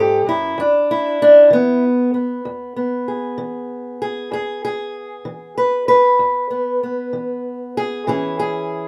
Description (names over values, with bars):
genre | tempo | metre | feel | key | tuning
acoustic country blues, solo or duo | 64 BPM (dotted quarters) | 12/8 | straight | E mixolydian | A4 = 440 Hz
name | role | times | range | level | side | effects
fingerpicked steel-string acoustic guitar | solo | 0.0-8.9 s | E2 to B4 | -18 LUFS | equal | none
room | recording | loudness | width
wet studio reverb, RT60 0.5 s | rough home demo mix | -17 LUFS | mono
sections
0.0-8.9 A section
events
none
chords
0.0 A; 0.6 E; 8.1 A